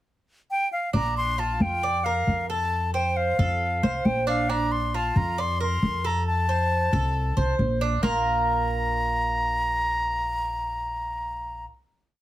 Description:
latin, Cuban son and guajira; 136 BPM; 4/4; straight; Bb major; A4 = 441 Hz
reedy concert flute; melody; 0.5-11.7 s; F5 to C6; -26 LUFS; left 1 dB
Cuban tres; arpeggios; 0.9-11.7 s; Bb3 to D5; -29 LUFS; right 2 dB
upright bass; bass; 0.9-11.7 s; Bb1 to F2; -27 LUFS; equal
light reverb; -22 LUFS; side -14 dB against mid
0.0-0.9 pickup bar; 0.9-8.0 montuno (vamp); 8.0-11.6 final chord
0.0 N.C.; 0.9 Bb; 2.7 F; 4.5 Bbadd9; 6.3 F; 8.0 Bb5

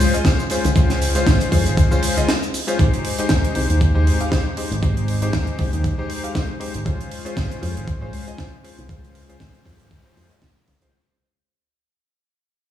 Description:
nu-disco, nu disco; 118 BPM; 4/4; swing 55% on 16ths; A4 = 439 Hz
bright electric grand piano; accompaniment; 0.0-10.9 s; Ab3 to F5; -24 LUFS; left 3 dB; sidechain pumping, tape echo
fingered electric bass with an envelope filter; bass; 0.0-10.9 s; Ab1 to F2; -20 LUFS; equal
tight funk drum kit; drums; 0.0-10.9 s; cabasa, hi-hat, snare drum; -26 LUFS; right 2 dB
electronic kick drum; drums; 0.2-10.5 s; -19 LUFS; equal; overdrive
light reverb, studio ambience; played on a big sound system in a bare room, large studio reverb, small room ambience; -17 LUFS; side -11 dB against mid
0.0-2.8 A section; 2.8-10.9 B section
drop 0.0-2.8; break 2.3-2.8; fade-out 2.8-10.9
0.0 Dbmaj7; 2.8 Abmaj7; 6.9 Dbmaj7

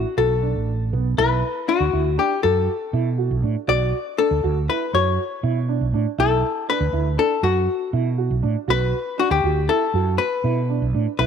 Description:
progressive instrumental, progressive; 120 BPM; 5/4; straight; B minor; A4 = 441 Hz
archtop guitar, miked and amplified; melody; 0.0-11.3 s; F#4 to D5; -21 LUFS; left 8 dB
dark grand piano; arpeggios; 0.0-11.3 s; B3 to F#4; -27 LUFS; right 15 dB
mellow fretless electric bass; bass; 0.0-11.3 s; A1 to B2; -21 LUFS; right 2 dB
light reverb, studio ambience; 1960s-style stereo with parts hard left and right; -18 LUFS; side -7 dB against mid
0.0-1.2 A section; 1.2-11.3 B section
0.0 Bm7

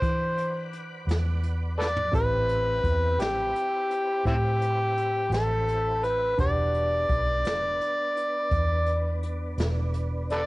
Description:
slow blues; 56 BPM (dotted quarters); 12/8; straight; E minor; A4 = 440 Hz
overdriven harmonica; melody; 0.0-10.5 s; C4 to D5; -26 LUFS; equal; cassette tape
bright upright piano; accompaniment; 0.0-10.5 s; C4 to B4; -41 LUFS; right 2 dB; cassette tape
tonewheel organ; sustained chords; 0.0-10.5 s; B3 to F#5; -39 LUFS; right 1 dB; slow rotary speaker, chorus vibrato, cassette tape
vintage muted fingered electric bass; bass; 0.0-10.5 s; E1 to E3; -28 LUFS; equal
jazz brush drum kit; drums; 0.0-10.5 s; hi-hat, kick drum, snare drum, toms; -31 LUFS; equal; cassette tape
little or no reverb; home recording on cassette; -24 LUFS; side -21 dB against mid
0.0-10.5 A section
drum fill 1.8-2.1
0.0 Em9; 2.1 Am9; 6.4 Em9

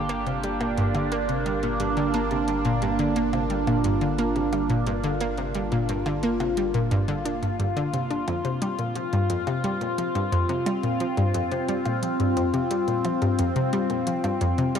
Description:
ambient, sequencer-driven space music; 88 BPM; 4/4; straight; A4 = 440 Hz
phased analog pad; sustained chords; 0.0-14.8 s; G3 to G4; -26 LUFS; equal; phaser, chorus
analog pluck; riff; 0.0-14.8 s; F2 to D4; -26 LUFS; equal; chorus, analog delay
round analog bass; bass; 0.0-8.2 s; G1; -34 LUFS; equal
bubbling stepped-filter texture; texture; 0.0-8.3 s; F4 to F5; -38 LUFS; equal; chorus, built-in reverb
electronic hi-hat and percussion blips; percussion; 0.1-14.8 s; -39 LUFS; equal; analog delay
moderate lush hall reverb, RT60 2.5 s; -22 LUFS; side -8 dB against mid
0.0-8.3 A section; 8.3-14.8 B section
0.0 Gm; 8.3 Fsus2

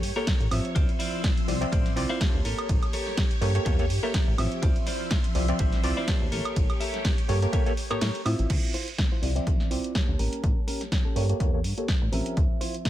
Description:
filtered disco house; 124 BPM; 4/4; swing 55% on 16ths; D minor; A4 = 440 Hz
phased string machine; sustained chords; 0.0-8.5 s; F3 to E6; -36 LUFS; equal; ensemble chorus, phaser, sidechain pumping, low-pass filter
plucky analog bass; bass; 0.0-12.5 s; A1 to A2; -28 LUFS; equal; tube saturation, sidechain pumping, low-pass filter
punchy analog drum machine; drums; 0.0-12.9 s; crash cymbal, hi-hat, ride cymbal, snare drum, woodblock; -33 LUFS; right 1 dB; sidechain pumping on hats, sidechain pumping on cymbals, sidechain pumping on perc
overdriven reed electric piano; accompaniment; 0.2-12.9 s; F3 to A5; -32 LUFS; right 1 dB; phaser, sidechain pumping, low-pass filter
clean electric guitar; riff; 0.2-12.9 s; C#4 to F5; -35 LUFS; left 1 dB; sidechain pumping, low-pass filter
electronic kick drum; drums; 0.3-12.9 s; -26 LUFS; equal
digital ambience; -23 LUFS; side -13 dB against mid
0.0-8.5 A section; 8.5-12.9 B section
drop 0.0-8.5; kick drops out 8.0-8.5
0.0 A7b9; 0.8 Dm9; 2.5 A7b9; 4.6 Dm9; 6.3 A7b9; 8.5 Dm9; 10.2 A7b9; 12.4 Dm9

